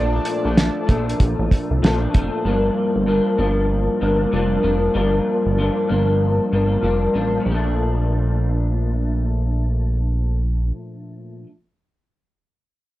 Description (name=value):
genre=indie pop, bedroom pop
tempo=96 BPM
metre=4/4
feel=swing 60% on 16ths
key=Bb major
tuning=A4 = 441 Hz
part: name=warm velvety synth lead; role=melody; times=0.0-0.5 s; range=D5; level=-30 LUFS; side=right 1 dB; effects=lush chorus, tape echo
part: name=electric guitar through a small old amp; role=accompaniment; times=0.0-11.5 s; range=G2 to D4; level=-21 LUFS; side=left 1 dB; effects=ensemble chorus, vibrato effect
part: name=warm analog pad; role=sustained chords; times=0.0-2.4 s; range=D4 to A5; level=-32 LUFS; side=right 1 dB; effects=chorus
part: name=chorused synth bass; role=bass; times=0.0-10.7 s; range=F1 to C2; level=-20 LUFS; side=equal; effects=none
part: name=cloth-damped thuddy drum kit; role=drums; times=0.3-2.3 s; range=hi-hat, kick drum, snare drum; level=-17 LUFS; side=equal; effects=none
room=moderate studio reverb, RT60 0.5 s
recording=worn, warbling old tape, cassette tape, warbly pitch drift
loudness=-17 LUFS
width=side -16 dB against mid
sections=0.0-2.5 A section; 2.5-7.5 B section; 7.5-10.0 C section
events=none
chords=0.0 Bbmaj7; 2.5 Gm7; 7.5 Bbmaj7